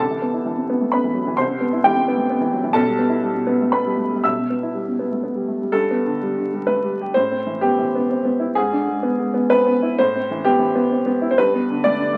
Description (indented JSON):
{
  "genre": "neoclassical minimalist piano",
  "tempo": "127 BPM",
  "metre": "3/4",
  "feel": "rubato",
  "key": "unclear",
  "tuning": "A4 = 440 Hz",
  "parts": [
    { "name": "clear upright piano", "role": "solo", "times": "0.0-12.2 s", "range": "B1 to E6", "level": "-20 LUFS", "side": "equal", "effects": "none" }
  ],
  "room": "moderate small room reverb, RT60 0.5 s",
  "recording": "very old 78 rpm record, vinyl crackle",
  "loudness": "-20 LUFS",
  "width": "mono",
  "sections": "0.0-5.7 A section; 5.7-12.2 B section",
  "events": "none",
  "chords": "0.0 Amadd9/C; 2.8 Em/B; 5.7 Gadd9; 7.1 Amadd9; 8.6 E7/G# (rootless); 10.0 Amadd9; 11.4 Gadd9",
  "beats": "0.45 0.92 | 1.38 1.85 2.31 | 2.77 3.24 3.72 | 4.24 4.74 5.22 | 5.72 6.20 6.67 | 7.14 7.62 8.09 | 8.56 9.03 9.51 | 9.98 10.44 10.91 | 11.38 11.84"
}